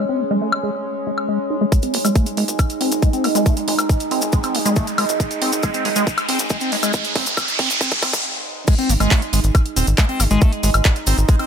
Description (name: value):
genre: psychedelic trance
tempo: 138 BPM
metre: 4/4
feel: straight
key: Ab major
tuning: A4 = 440 Hz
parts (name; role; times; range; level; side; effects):
- overtone-sweeping drone; sustained chords; 0.0-11.5 s; Ab3 to Eb4; -25 LUFS; right 2 dB; chorus, built-in reverb, sidechain pumping
- liquid acid bass; riff; 0.0-11.5 s; Ab3 to Eb4; -22 LUFS; moving between left 4 dB and right 5 dB; phaser, auto-pan, sidechain pumping, tape echo
- techno drum kit; drums; 0.5-11.5 s; crash cymbal, handclaps, hi-hat, woodblock; -23 LUFS; equal; none
- electronic kick drum; drums; 1.7-11.4 s; none; -16 LUFS; equal; none
- cabasa; percussion; 1.7-11.4 s; none; -27 LUFS; left 3 dB; none
- riser and noise sweep; sound effects; 4.6-8.7 s; none; -24 LUFS; right 2 dB; none
- tight sequencer bass; bass; 1.9-11.2 s; Eb1 to Ab1; -21 LUFS; equal; high-pass filter
room: light reverb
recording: high-pass filter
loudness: -16 LUFS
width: side -7 dB against mid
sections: 0.0-1.7 A section; 1.7-8.7 B section; 8.7-11.5 C section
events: build-up 1.7-8.7; filter sweep on acid bass 1.7-8.7; filter sweep 1.7-8.7; riser 4.6-8.2; drum fill 5.2-8.2; noise sweep 6.9-8.7; stop 8.2-8.7; drop 8.7-11.5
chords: 0.0 Ab5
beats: 0.42 0.85 1.29 | 1.72 2.15 2.59 3.02 | 3.46 3.90 4.33 4.76 | 5.20 5.63 6.07 6.50 | 6.94 7.37 7.81 8.24 | 8.68 9.11 9.55 9.98 | 10.42 10.85 11.29